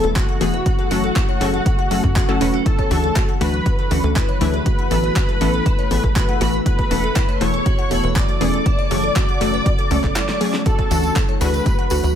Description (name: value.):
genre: progressive house.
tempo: 120 BPM.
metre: 4/4.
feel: straight.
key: unclear.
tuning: A4 = 438 Hz.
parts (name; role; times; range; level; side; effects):
wide unison lead; melody; 0.0-12.1 s; F#4 to D5; -25 LUFS; equal; ensemble chorus, sidechain pumping, ping-pong delay.
dark studio violin section; second line; 0.0-12.1 s; F#5 to D6; -29 LUFS; equal; sidechain pumping, ping-pong delay.
shimmering ambient pad; sustained chords; 0.0-12.2 s; B2 to A4; -28 LUFS; equal; chorus, built-in reverb, sidechain pumping.
glassy wavetable pluck; arpeggios; 0.0-12.1 s; C#4 to F#5; -26 LUFS; right 4 dB; chorus, sidechain pumping, ping-pong delay.
wide unison pluck; stabs; 0.0-12.0 s; E3 to B4; -24 LUFS; left 5 dB; sidechain pumping.
tight sequencer bass; bass; 0.0-12.2 s; E1 to F#2; -22 LUFS; equal; sidechain pumping.
deep house drum kit; drums; 0.0-12.1 s; handclaps, hi-hat, snare drum; -28 LUFS; equal; small room ambience.
electronic kick drum; drums; 0.2-11.8 s; none; -20 LUFS; equal; small room ambience.
tambourine; percussion; 10.7-12.1 s; none; -34 LUFS; left 1 dB; none.
room: little or no reverb.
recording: none.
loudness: -16 LUFS.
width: side -9 dB against mid.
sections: 0.0-12.2 A section.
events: drum fill 10.2-10.7.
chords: 0.0 Esus4; 2.7 Dadd9; 4.7 Asus2; 6.7 Esus4; 8.7 F#m; 10.7 Dadd9.